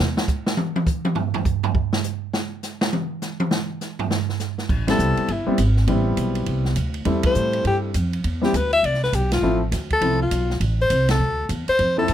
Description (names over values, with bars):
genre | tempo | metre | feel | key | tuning
jazz, small-group swing and bop | 203 BPM | 4/4 | swing 62% on 8ths | A minor | A4 = 440 Hz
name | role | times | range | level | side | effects
upright bass | bass | 0.0-0.2, 4.7-12.1 s | G1 to A2 | -22 LUFS | right 1 dB | none
open jazz drum kit | drums | 0.2-12.1 s | crash cymbal, hi-hat, kick drum, ride cymbal, snare drum, toms | -24 LUFS | right 2 dB | none
clear alto saxophone | melody | 4.9-12.1 s | E4 to E5 | -21 LUFS | left 2 dB | none
warm concert grand piano | accompaniment | 4.9-12.1 s | F3 to E4 | -23 LUFS | left 1 dB | none
room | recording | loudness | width
light reverb | close, detailed microphones | -19 LUFS | side -10 dB against mid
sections
0.0-4.7 A section; 4.7-12.1 B section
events
drum solo 0.0-4.7; band accent 4.8, 7.2, 9.3, 11.1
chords
0.0 N.C.; 4.7 Am7; 9.4 Dm7